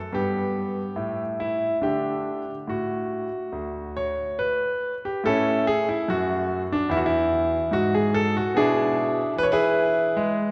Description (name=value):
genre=classical, baroque-style suite movement for grand piano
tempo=72 BPM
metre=4/4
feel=rubato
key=D major, A major from 5.2 s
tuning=A4 = 440 Hz
part: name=bright concert grand piano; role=solo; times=0.0-10.5 s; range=D2 to C#5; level=-24 LUFS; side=equal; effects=none
room=wet church reverb, RT60 3.1 s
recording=none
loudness=-24 LUFS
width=mono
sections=0.0-5.2 A section; 5.2-10.5 A section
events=none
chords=0.1 G; 1.0 N.C.; 1.8 D; 5.2 A5; 8.5 E7/B